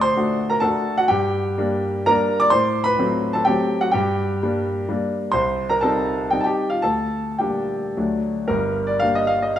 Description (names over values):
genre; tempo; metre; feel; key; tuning
classical, romantic triple-time dance for piano with dotted rhythms; 102-135 BPM; 3/4; rubato; G minor; A4 = 440 Hz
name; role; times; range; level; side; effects
clear grand piano; solo; 0.0-9.6 s; G1 to D6; -18 LUFS; equal; none
room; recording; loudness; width
moderate recital hall reverb, RT60 1.6 s; minimal, uncompressed stereo recording; -18 LUFS; side -11 dB against mid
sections
0.0-8.5 A section; 8.5-9.6 B section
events
none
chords
0.0 D7; 1.1 Gm; 2.5 F#dim/A; 3.9 Gm; 5.3 Cm; 6.8 Gm/D; 8.0 D; 8.5 Gm